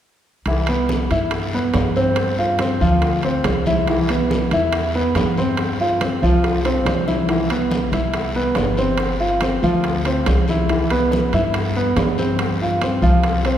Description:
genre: Afro-Cuban jazz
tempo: 141 BPM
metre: 4/4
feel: straight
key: C major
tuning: A4 = 440 Hz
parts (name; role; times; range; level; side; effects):
- warm baby grand piano; accompaniment; 0.5-13.6 s; E3 to F5; -19 LUFS; equal; none
- upright bass; bass; 0.5-13.6 s; G1 to G2; -22 LUFS; equal; none
- bongos; percussion; 0.5-13.6 s; none; -30 LUFS; left 3 dB; none
- congas; percussion; 0.5-13.6 s; none; -27 LUFS; equal; none
- guiro; percussion; 0.5-13.6 s; none; -34 LUFS; left 2 dB; none
- timbales; percussion; 0.5-13.6 s; none; -28 LUFS; right 4 dB; none
room: wet church reverb, RT60 3.4 s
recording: recorded in a church or concert hall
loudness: -16 LUFS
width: side -10 dB against mid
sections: 0.5-13.6 A section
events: drum fill 6.4-7.3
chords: 0.5 Cmaj7; 2.2 G7sus4; 3.9 Cmaj7; 5.6 G7sus4; 7.3 Cmaj7; 9.0 G7sus4; 10.7 Cmaj7; 12.4 G7sus4

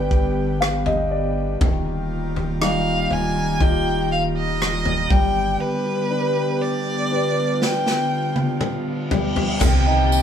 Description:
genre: pop ballad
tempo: 60 BPM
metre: 4/4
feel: straight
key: unclear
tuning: A4 = 442 Hz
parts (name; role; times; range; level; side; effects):
- rich violin; melody; 0.0-8.6 s; B4 to Ab5; -24 LUFS; right 1 dB; none
- dark baby grand piano; accompaniment; 0.0-10.2 s; C3 to B5; -25 LUFS; left 2 dB; none
- airy breathy pad; sustained chords; 0.0-10.2 s; D3 to G4; -25 LUFS; equal; chorus
- warm sub bass; bass; 0.0-10.2 s; D1 to C2; -26 LUFS; equal; none
- natural country drum kit; drums; 0.1-9.8 s; crash cymbal, kick drum, rim click, snare drum, toms; -21 LUFS; equal; none
- reverse cymbal; sound effects; 8.7-9.6 s; none; -32 LUFS; left 1 dB; none
- dark studio violin section; second line; 9.6-10.2 s; G4 to G5; -22 LUFS; right 5 dB; none
- tambourine; percussion; 9.6-10.2 s; none; -31 LUFS; right 5 dB; none
room: wet studio reverb, RT60 0.7 s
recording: band playing live in one room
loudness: -18 LUFS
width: side -8 dB against mid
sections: 0.0-9.6 A section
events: grand piano fill 0.0-1.6; drum fill 7.6-9.6; reverse cymbal 8.7-9.6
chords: 0.0 G; 1.6 Ebadd9; 5.1 G; 9.6 Cm7

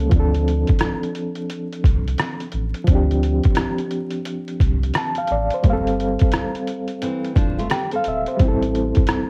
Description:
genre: lo-fi hip hop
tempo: 87 BPM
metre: 4/4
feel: swing 65% on 16ths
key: D minor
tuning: A4 = 437 Hz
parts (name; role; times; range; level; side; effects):
- overdriven reed electric piano; accompaniment; 0.0-9.3 s; F3 to A5; -25 LUFS; equal; fast tremolo, cassette tape
- soft dub sub bass; bass; 0.0-8.9 s; D1 to D2; -24 LUFS; equal; none
- trip hop sampler-style drum kit; drums; 0.1-9.3 s; hi-hat, kick drum, rim click; -21 LUFS; equal; cassette tape
- nylon-string guitar; second line; 7.0-8.4 s; E3 to A4; -28 LUFS; equal; cassette tape, analog delay
room: light reverb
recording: home recording on cassette, vinyl crackle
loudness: -21 LUFS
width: mono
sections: 0.1-9.3 A section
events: none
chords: 0.1 Dm7; 5.6 G9sus4; 8.4 Am7

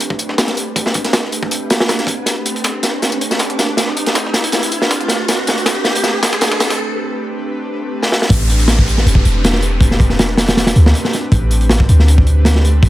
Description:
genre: drum and bass, jungle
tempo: 159 BPM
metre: 4/4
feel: straight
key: A minor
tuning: A4 = 442 Hz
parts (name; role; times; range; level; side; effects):
- airy breathy pad; sustained chords; 0.0-12.9 s; A3 to B4; -22 LUFS; equal; chorus, vintage 12-bit sampler grit
- breakbeat sampler-style drum kit; drums; 0.0-6.8 s; hi-hat, snare drum, tambourine; -21 LUFS; left 1 dB; high-pass filter on snare, high-pass filter on perc, high-pass filter on hats
- crunchy breakbeat drum kit; drums; 0.0-12.9 s; hi-hat, kick drum, snare drum; -15 LUFS; equal; high-pass filter on kick, high-pass filter on hats, high-pass filter on snare, high-pass filter on room
- riser and downlifter; sound effects; 0.0-11.3 s; none; -23 LUFS; equal; none
- warm 808-style bass; bass; 8.3-12.9 s; E1 to D2; -12 LUFS; equal; none
room: light reverb, studio ambience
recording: none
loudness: -12 LUFS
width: side -15 dB against mid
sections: 0.0-8.3 A section; 8.3-12.9 B section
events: build-up 0.0-8.3; riser 0.0-6.8; filter sweep on analog synth pad 0.0-8.3; drum fill 2.3-6.8, 8.0; break 6.8-8.3; drop 8.3-12.9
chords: 0.0 Am11

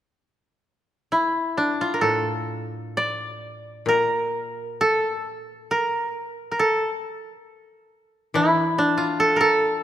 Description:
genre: japanese traditional, Japanese chamber music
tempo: 63-70 BPM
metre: 4/4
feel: rubato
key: D hirajoshi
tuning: A4 = 440 Hz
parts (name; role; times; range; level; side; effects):
- koto; melody; 1.1-9.8 s; D4 to D5; -21 LUFS; equal; none
- koto; accompaniment; 2.0-9.8 s; A2 to E3; -28 LUFS; left 2 dB; none
room: moderate concert hall reverb, RT60 1.8 s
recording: none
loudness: -20 LUFS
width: side -11 dB against mid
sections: 1.1-9.8 A section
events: none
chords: none

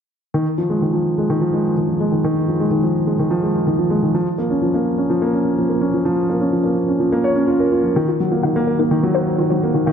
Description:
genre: electronica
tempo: 126 BPM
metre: 4/4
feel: straight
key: F phrygian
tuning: A4 = 443 Hz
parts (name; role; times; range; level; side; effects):
- dark concert grand piano; riff; 0.3-9.9 s; Eb3 to Db5; -16 LUFS; equal; digital delay
- warbly dusty pluck; arpeggios; 8.0-9.9 s; Eb4 to F5; -22 LUFS; left 3 dB; chorus, digital delay
room: wet lush hall reverb, RT60 2.1 s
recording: none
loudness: -16 LUFS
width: side -8 dB against mid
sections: 0.3-9.9 A section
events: none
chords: 0.3 Fm7; 4.2 Bbm/F; 8.0 Gb6

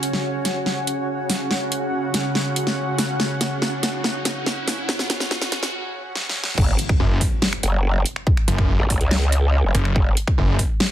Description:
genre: heavy wobble dubstep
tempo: 142 BPM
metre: 4/4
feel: half-time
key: unclear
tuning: A4 = 440 Hz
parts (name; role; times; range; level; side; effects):
- supersaw pad; sustained chords; 0.0-6.5 s; C#3 to F#5; -26 LUFS; equal; sidechain pumping, low-pass filter
- dubstep drum kit; drums; 0.0-10.9 s; crash cymbal, finger snaps, hi-hat, snare drum; -23 LUFS; equal; small room ambience
- riser and impact; sound effects; 0.0-8.3 s; none; -32 LUFS; equal; none
- granular cloud pad; texture; 0.0-5.7 s; C#4 to F#5; -30 LUFS; right 1 dB; built-in reverb, sidechain pumping
- growl bass; bass; 6.6-10.2 s; F#1 to C#2; -18 LUFS; equal; chorus, overdrive
- electronic kick drum; drums; 6.6-10.7 s; none; -20 LUFS; equal; small room ambience
- snarling distorted saw bass; bass; 7.0-10.6 s; F#1; -19 LUFS; equal; distortion, overdrive
room: digital ambience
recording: dense, heavily limited modern master, high-pass filter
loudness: -19 LUFS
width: side -12 dB against mid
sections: 0.0-6.6 A section; 6.6-10.9 B section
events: build-up 0.0-6.6; drum fill 0.0-5.7, 6.2-6.6; riser 0.0-5.7; filter sweep on supersaw synth 0.0-6.6; filter sweep 0.0-6.6; break 5.7-6.6; drop 6.6-10.9; impact 6.6-8.3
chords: 0.0 F#5

